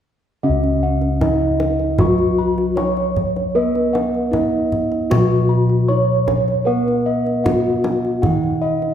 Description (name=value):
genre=Javanese gamelan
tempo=77 BPM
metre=4/4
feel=straight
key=unclear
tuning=A4 = 440 Hz
part: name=gamelan-type bronze metallophone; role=melody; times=0.4-8.9 s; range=Db4 to Db5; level=-20 LUFS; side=equal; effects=none
part: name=gamelan-type bronze metallophone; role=accompaniment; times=0.4-8.9 s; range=Db3 to Cb4-45c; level=-23 LUFS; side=right 1 dB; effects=none
part: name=gamelan-type bossed gongs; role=arpeggios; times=0.4-8.9 s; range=Eb5+30c to Db6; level=-24 LUFS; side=left 3 dB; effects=none
part: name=gamelan-type bossed gongs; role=bass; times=0.4-8.9 s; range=Db2 to Cb5-45c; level=-22 LUFS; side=left 1 dB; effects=none
part: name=kendang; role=percussion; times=0.6-8.9 s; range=none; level=-24 LUFS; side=equal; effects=none
room=wet recital hall reverb, RT60 1.4 s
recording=heard from further back in the room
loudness=-15 LUFS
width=side -9 dB against mid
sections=0.4-8.9 A section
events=none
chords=none